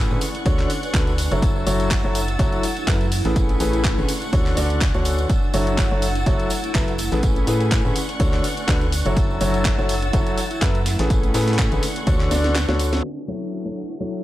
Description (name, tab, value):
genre	piano house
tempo	124 BPM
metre	4/4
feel	swing 55% on 16ths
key	F# minor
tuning	A4 = 440 Hz
part	dark symphonic violin section	sustained chords	0.0-14.2 s	A3 to A6	-32 LUFS	equal	sidechain pumping, low-pass filter
part	clear concert grand piano	riff	0.0-14.2 s	A2 to D5	-24 LUFS	left 1 dB	sidechain pumping, low-pass filter, tape echo
part	organ-like FM bass	bass	0.0-13.0 s	F#1 to A2	-23 LUFS	equal	sidechain pumping
part	granular cloud pad	texture	0.0-14.2 s	A3 to C#6	-31 LUFS	right 1 dB	built-in reverb, sidechain pumping
part	tambourine	percussion	0.1-13.0 s	none	-36 LUFS	right 3 dB	tape echo
part	breakbeat sampler-style drum kit	drums	0.2-12.9 s	hi-hat, snare drum	-36 LUFS	equal	none
part	garage drum kit	drums	0.2-14.2 s	handclaps, hi-hat, shaker, snare drum	-29 LUFS	equal	none
part	electronic kick drum	drums	0.5-12.2 s	none	-22 LUFS	equal	none
room	little or no reverb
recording	echo-heavy mix, low-pass filter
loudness	-18 LUFS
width	side -15 dB against mid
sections	0.0-13.0 A section; 13.0-14.2 B section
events	drum fill 12.3-13.0; kick drops out 12.6-13.0; band accent 12.9; filter sweep 13.0-14.2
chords	0.2 Dmaj7; 1.4 F#m7; 3.4 Amaj9; 4.1 Dmaj7; 5.3 F#m7; 7.2 Amaj9; 8.0 Dmaj7; 9.2 F#m7; 11.1 Amaj9; 11.8 Dmaj7; 13.0 F#m7